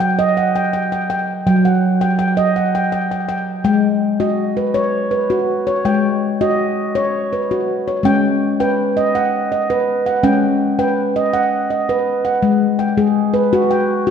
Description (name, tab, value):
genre	world meditative, meditative tuned percussion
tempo	82 BPM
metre	3/4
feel	straight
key	G# minor pentatonic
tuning	A4 = 440 Hz
part	handpan	solo	0.0-14.1 s	F#3 to G5	-14 LUFS	equal	slapback echo
room	wet echo chamber reverb, RT60 2.1 s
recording	dark, warm production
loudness	-14 LUFS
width	side -7 dB against mid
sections	0.0-3.6 A section; 3.6-12.4 B section; 12.4-14.1 C section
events	none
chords	0.0 D#m; 3.6 G#m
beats	0.72 | 1.45 2.19 2.92 | 3.65 4.38 5.11 | 5.84 6.58 7.31 | 8.04 8.77 9.50 | 10.23 10.97 11.70 | 12.43 13.15 13.88